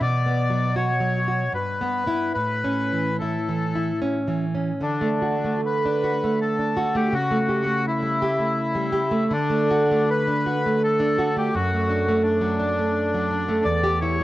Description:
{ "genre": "romantic duo for bandoneon and classical guitar", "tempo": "69-87 BPM", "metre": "3/4", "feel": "rubato", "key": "D major", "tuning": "A4 = 440 Hz", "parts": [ { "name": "bandoneon", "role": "melody", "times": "0.0-14.2 s", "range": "D4 to D5", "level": "-25 LUFS", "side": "left 2 dB", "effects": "cassette tape" }, { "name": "nylon-string guitar", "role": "accompaniment", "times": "0.0-14.2 s", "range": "E2 to G4", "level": "-22 LUFS", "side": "right 1 dB", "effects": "cassette tape" } ], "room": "moderate spring reverb, RT60 2.4 s", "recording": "home recording on cassette", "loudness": "-20 LUFS", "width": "side -15 dB against mid", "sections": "0.0-4.8 A section; 4.8-14.2 B section", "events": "none", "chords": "0.0 Bm; 1.5 Em/G; 2.3 A; 4.8 D; 7.1 A7/C#; 9.3 D; 11.5 D/F#; 13.6 C#dim/E" }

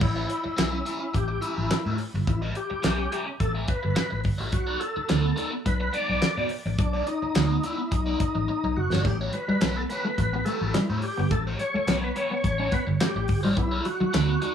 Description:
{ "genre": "funk", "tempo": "106 BPM", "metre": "4/4", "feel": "straight", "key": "unclear", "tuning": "A4 = 440 Hz", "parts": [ { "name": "overdriven tonewheel organ", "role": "melody", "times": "0.0-14.5 s", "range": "D4 to D5", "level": "-29 LUFS", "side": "left 1 dB", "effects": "chorus vibrato, slow rotary speaker, tape echo" }, { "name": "biting overdriven guitar", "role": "accompaniment", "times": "0.0-14.5 s", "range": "B3 to E5", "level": "-33 LUFS", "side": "left 2 dB", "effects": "phaser" }, { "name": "vintage muted fingered electric bass", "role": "bass", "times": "0.0-14.4 s", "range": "F#1 to B2", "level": "-27 LUFS", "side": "equal", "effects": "none" }, { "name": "damped 70s drum kit", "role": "drums", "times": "0.0-14.5 s", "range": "crash cymbal, handclaps, hi-hat, kick drum, snare drum, splash cymbal", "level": "-27 LUFS", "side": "equal", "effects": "none" }, { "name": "semi-hollow electric guitar", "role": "riff", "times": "9.1-14.5 s", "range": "F#3 to C#4", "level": "-29 LUFS", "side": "equal", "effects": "none" } ], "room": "moderate studio reverb, RT60 0.6 s", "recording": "none", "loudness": "-23 LUFS", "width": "side -8 dB against mid", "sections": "0.0-14.5 A section", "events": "drum fill 8.5-9.0", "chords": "0.0 A9; 4.5 B7#9; 9.0 A9; 13.6 B7#9" }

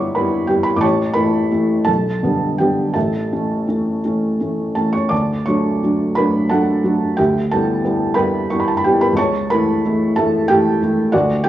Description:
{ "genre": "classical, romantic nocturne for solo piano", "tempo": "55-62 BPM (dotted quarters)", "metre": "12/8", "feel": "rubato", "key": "unclear", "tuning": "A4 = 440 Hz", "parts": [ { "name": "felt-muted upright piano", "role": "solo", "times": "0.0-11.5 s", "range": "G1 to E6", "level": "-15 LUFS", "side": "equal", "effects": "none" } ], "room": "moderate recital hall reverb, RT60 1.6 s", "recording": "worn, warbling old tape, cassette tape, warbly pitch drift, small room reverb", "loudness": "-15 LUFS", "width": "side -13 dB against mid", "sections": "0.0-11.5 A section", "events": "none", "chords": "0.0 Em7/G; 0.8 A; 1.9 G/B; 2.9 A; 5.1 D; 7.2 Em7/D; 9.2 A/C#" }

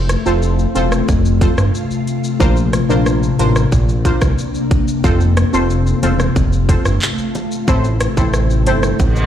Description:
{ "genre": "dancehall", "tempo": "91 BPM", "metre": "4/4", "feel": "straight", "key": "F major", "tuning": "A4 = 439 Hz", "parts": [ { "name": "ethereal airy pad", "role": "sustained chords", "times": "0.0-9.3 s", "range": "C3 to F4", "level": "-20 LUFS", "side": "left 4 dB", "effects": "ensemble chorus, built-in reverb, phaser, sidechain pumping" }, { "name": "fat analog bass", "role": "bass", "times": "0.0-9.3 s", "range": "E1 to C2", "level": "-15 LUFS", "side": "equal", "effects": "none" }, { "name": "island pop drum kit", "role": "drums", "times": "0.1-9.3 s", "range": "handclaps, hi-hat, kick drum, rim click, shaker", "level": "-18 LUFS", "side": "equal", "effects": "none" }, { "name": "synth brass stab", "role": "accompaniment", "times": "0.3-9.0 s", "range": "C4 to C5", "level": "-20 LUFS", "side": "equal", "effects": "chorus, phaser" }, { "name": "bongos", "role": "percussion", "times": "6.0-9.3 s", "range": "none", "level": "-30 LUFS", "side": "right 2 dB", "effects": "none" }, { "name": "reverse cymbal", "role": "sound effects", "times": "9.1-9.3 s", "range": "none", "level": "-22 LUFS", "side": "right 2 dB", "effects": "none" } ], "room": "light reverb", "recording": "played on a big sound system in a bare room, large studio reverb", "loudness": "-13 LUFS", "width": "side -10 dB against mid", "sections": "0.0-9.3 A section", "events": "reverse cymbal 9.1", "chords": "0.0 F; 2.4 Bbadd9; 5.0 F; 7.7 Am" }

